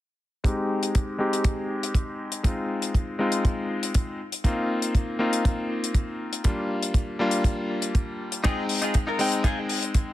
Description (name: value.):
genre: nu-disco, nu disco.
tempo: 120 BPM.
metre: 4/4.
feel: straight.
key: unclear.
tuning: A4 = 437 Hz.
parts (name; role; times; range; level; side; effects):
bright electric grand piano; accompaniment; 0.4-10.1 s; G3 to G5; -26 LUFS; left 1 dB; sidechain pumping, low-pass filter, digital delay.
kick drum; drums; 0.4-10.1 s; none; -22 LUFS; equal; none.
hi-hat; drums; 0.5-10.0 s; none; -31 LUFS; left 6 dB; none.
direct-recorded clean electric guitar; riff; 8.4-9.7 s; Eb4 to Bb4; -30 LUFS; left 1 dB; lush chorus, digital delay.
room: light reverb, small room reverb.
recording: none.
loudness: -23 LUFS.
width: side -14 dB against mid.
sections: 0.4-10.1 A section.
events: filter sweep on electric grand piano 0.4-10.1.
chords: 0.4 Abmaj7; 2.4 Ab6; 4.2 Bbsus24; 6.4 Gm7; 8.4 Fm7.